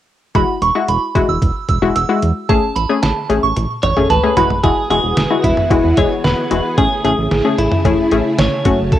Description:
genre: synth-pop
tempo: 112 BPM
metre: 4/4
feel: straight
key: E major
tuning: A4 = 440 Hz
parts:
  - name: analog pluck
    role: accompaniment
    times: 0.3-9.0 s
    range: G#3 to G#4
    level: -17 LUFS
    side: left 5 dB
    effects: chorus, cassette tape
  - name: chorused synth bass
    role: bass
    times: 0.3-8.9 s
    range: E1 to E2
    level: -19 LUFS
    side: right 1 dB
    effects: none
  - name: detuned 8-bit digital drum machine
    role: drums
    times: 0.3-9.0 s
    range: hi-hat, kick drum, snare drum, toms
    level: -18 LUFS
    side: right 1 dB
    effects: overdrive, cassette tape
  - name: soft synth bell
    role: second line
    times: 0.4-4.5 s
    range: A5 to E6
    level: -19 LUFS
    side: right 6 dB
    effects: chorus, phaser, cassette tape, tape echo
  - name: twelve-string electric guitar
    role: melody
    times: 3.8-9.0 s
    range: E4 to C#5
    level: -18 LUFS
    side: equal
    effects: lush chorus, cassette tape, tape echo
  - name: string machine, violins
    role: sustained chords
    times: 4.6-9.0 s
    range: C#3 to G#4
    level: -22 LUFS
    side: equal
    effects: ensemble chorus, cassette tape
room: moderate small room reverb, RT60 0.5 s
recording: home recording on cassette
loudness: -13 LUFS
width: side -12 dB against mid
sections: 0.3-4.6 A section; 4.6-9.0 B section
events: drum fill 3.6-4.6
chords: 0.3 Eadd9; 2.5 Amaj7; 4.4 Eadd9; 6.8 Amaj7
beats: | 0.35 0.89 1.42 1.96 | 2.49 3.03 3.56 4.10 | 4.64 5.17 5.71 6.24 | 6.78 7.31 7.85 8.39 | 8.92

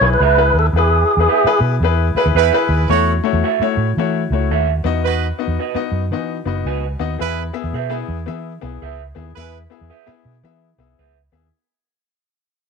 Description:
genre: soul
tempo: 112 BPM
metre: 4/4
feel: swing 63% on 8ths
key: E major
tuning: A4 = 440 Hz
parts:
  - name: tonewheel organ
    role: melody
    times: 0.0-1.6 s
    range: G#4 to B4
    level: -16 LUFS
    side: equal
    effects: overdrive, fast rotary speaker
  - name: warm baby grand piano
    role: accompaniment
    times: 0.0-11.5 s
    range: A3 to B5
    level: -21 LUFS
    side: left 12 dB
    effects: none
  - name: vintage muted fingered electric bass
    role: bass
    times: 0.0-11.5 s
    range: F#1 to E3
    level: -19 LUFS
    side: right 1 dB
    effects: none
  - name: electric guitar through a small old amp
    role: stabs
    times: 0.2-11.2 s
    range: F#4 to E5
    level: -21 LUFS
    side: right 14 dB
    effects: none
  - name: warm horn section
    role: second line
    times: 2.2-9.6 s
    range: D#4 to C#5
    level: -19 LUFS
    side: right 13 dB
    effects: none
room: light reverb, studio reverb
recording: 1960s-style stereo with parts hard left and right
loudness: -15 LUFS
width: side -5 dB against mid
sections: 0.0-2.9 A section; 2.9-11.5 B section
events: band accent 0.7-2.9; fade-out 2.9-11.5; grand piano fill 6.1-7.2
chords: 0.0 E; 2.9 F#m7/E; 4.8 B/E; 7.2 E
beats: 0.21 | 0.75 1.29 1.82 2.36 | 2.90 3.44 3.98 4.51 | 5.05 5.59 6.13 6.67 | 7.21 7.74 8.28 8.82 | 9.36 9.90 10.44 10.98

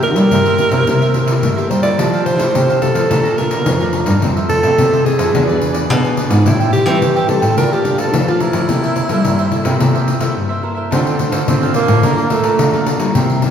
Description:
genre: samba and choro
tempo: 108 BPM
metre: 4/4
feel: straight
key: unclear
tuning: A4 = 440 Hz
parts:
  - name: clear alto saxophone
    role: melody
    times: 0.0-10.4 s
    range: E4 to D5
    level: -17 LUFS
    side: right 2 dB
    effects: none
  - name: cavaquinho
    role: accompaniment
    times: 0.0-13.5 s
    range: D4 to Bb5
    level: -23 LUFS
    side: right 2 dB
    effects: none
  - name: nylon-string guitar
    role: accompaniment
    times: 0.0-13.5 s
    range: F2 to A4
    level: -21 LUFS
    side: left 2 dB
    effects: none
  - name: nylon-string guitar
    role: bass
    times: 0.0-13.5 s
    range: E2 to A3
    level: -17 LUFS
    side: equal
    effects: none
  - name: pandeiro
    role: percussion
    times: 0.0-13.5 s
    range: none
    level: -19 LUFS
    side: left 2 dB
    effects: none
  - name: breathy tenor saxophone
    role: second line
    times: 10.9-12.9 s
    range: A3 to C4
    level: -18 LUFS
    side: right 5 dB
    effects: none
room: wet scoring stage reverb, RT60 2.1 s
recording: recorded in a church or concert hall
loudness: -12 LUFS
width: side -8 dB against mid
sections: 0.0-10.9 A section; 10.9-13.5 B section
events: break 10.4-10.9; tenor saxophone solo 10.9-13.5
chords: 0.0 C7; 2.0 Fmaj9; 3.1 Bbmaj7#11; 4.2 Fmaj7; 5.3 E7; 6.5 Am7; 7.6 Bbmaj7; 8.7 C6; 10.9 Dm7; 12.0 Bbmaj7/D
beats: 0.31 0.87 1.43 | 1.98 2.54 3.10 3.66 | 4.22 4.78 5.33 5.89 | 6.45 7.01 7.57 8.13 | 8.69 9.24 9.80 10.36 | 10.92 11.48 12.04 12.59 | 13.15

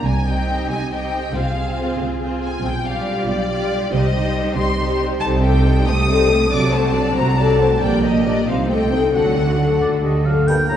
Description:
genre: classical, dramatic, fast romantic movement for symphony orchestra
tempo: 92 BPM (dotted quarters)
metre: 6/8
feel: straight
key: C minor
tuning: A4 = 439 Hz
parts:
  - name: warm symphonic violin section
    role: melody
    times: 0.0-9.8 s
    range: D5 to Eb6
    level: -24 LUFS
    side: left 2 dB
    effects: none
  - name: concert harp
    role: arpeggios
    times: 0.0-10.8 s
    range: G2 to A5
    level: -23 LUFS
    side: left 5 dB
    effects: none
  - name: rich studio double bass section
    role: bass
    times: 0.0-10.4 s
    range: Bb1 to D2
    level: -21 LUFS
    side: right 1 dB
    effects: none
  - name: rich symphonic cello section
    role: bass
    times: 0.0-10.4 s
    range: Bb2 to D3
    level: -24 LUFS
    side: right 1 dB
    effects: none
  - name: warm symphonic violin section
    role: second line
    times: 0.3-10.5 s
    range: F#4 to Eb5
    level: -27 LUFS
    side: left 2 dB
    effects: none
  - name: warm symphonic viola section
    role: accompaniment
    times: 0.3-10.3 s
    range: F#3 to F#4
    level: -24 LUFS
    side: right 2 dB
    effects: none
  - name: warm oboe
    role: second line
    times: 9.8-10.8 s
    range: D5 to Bb5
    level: -26 LUFS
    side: right 2 dB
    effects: none
  - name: mellow hollow small flute group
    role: second line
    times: 10.5-10.8 s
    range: G6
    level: -26 LUFS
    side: right 1 dB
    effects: none
  - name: warm clarinet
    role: second line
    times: 10.5-10.8 s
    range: Bb4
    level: -33 LUFS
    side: left 1 dB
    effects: none
  - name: mellow bassoon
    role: accompaniment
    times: 10.5-10.8 s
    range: G2 to A2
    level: -31 LUFS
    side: right 1 dB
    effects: none
  - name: mellow French horn section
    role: sustained chords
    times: 10.5-10.8 s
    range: Bb3 to D4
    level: -33 LUFS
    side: left 2 dB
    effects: none
  - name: triangle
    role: percussion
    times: 10.5-10.8 s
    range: none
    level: -38 LUFS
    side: left 1 dB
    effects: none
room: wet concert hall reverb, RT60 2.1 s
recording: heard from further back in the room, nothing above 10.8 kHz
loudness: -16 LUFS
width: side -10 dB against mid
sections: 0.0-10.5 A section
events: none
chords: 0.0 Cm; 1.4 Fm/C; 2.6 G7/B; 3.9 Cm; 5.2 Am7b5/C; 6.5 D7/C; 7.8 Gm/Bb; 8.5 Adim/C; 9.1 D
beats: | 0.04 0.70 | 1.35 1.99 | 2.64 3.28 | 3.92 4.57 | 5.21 5.86 | 6.51 7.16 | 7.81 8.47 | 9.15 9.82 | 10.48

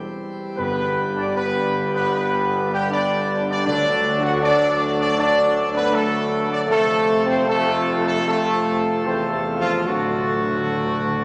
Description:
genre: classical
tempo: 78 BPM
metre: 4/4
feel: uneven beats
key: G major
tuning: A4 = 439 Hz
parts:
  - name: clear trombone section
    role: sustained chords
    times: 0.0-11.2 s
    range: C3 to A3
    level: -32 LUFS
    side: equal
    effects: none
  - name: pipe organ, plenum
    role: sustained chords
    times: 0.0-11.2 s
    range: A2 to A4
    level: -28 LUFS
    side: equal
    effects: none
  - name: warm tuba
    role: bass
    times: 0.0-11.2 s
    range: E1 to F2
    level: -30 LUFS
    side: equal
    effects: none
  - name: dark trumpet section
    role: melody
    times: 0.6-11.2 s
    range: F4 to F#5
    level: -24 LUFS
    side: equal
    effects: none
  - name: warm French horn section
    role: sustained chords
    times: 0.6-11.2 s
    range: F3 to F#4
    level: -26 LUFS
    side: equal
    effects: none
  - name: timpani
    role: percussion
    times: 0.6-4.8, 9.9-11.2 s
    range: G2 to D3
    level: -38 LUFS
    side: equal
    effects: none
room: wet church reverb, RT60 3.0 s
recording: none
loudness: -20 LUFS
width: mono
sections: 0.0-11.2 A section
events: timpani fill 9.9-11.2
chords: 0.0 C/E; 0.6 G; 3.7 D; 6.7 F; 9.9 D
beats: | 0.58 1.36 2.14 2.91 | 3.67 4.42 5.18 5.94 | 6.71 7.48 8.26 9.05 | 9.87 10.70

